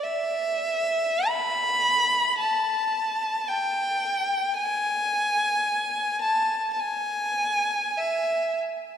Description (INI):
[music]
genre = classical, free, expressive piece for unaccompanied violin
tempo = 45-56 BPM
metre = 4/4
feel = rubato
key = unclear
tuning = A4 = 440 Hz
[part]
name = warm violin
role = solo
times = 0.0-8.6 s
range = E5 to B5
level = -23 LUFS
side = equal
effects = none
[sound]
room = wet church reverb, RT60 3.5 s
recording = none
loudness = -23 LUFS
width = side -8 dB against mid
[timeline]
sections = 0.0-9.0 A section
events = none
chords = none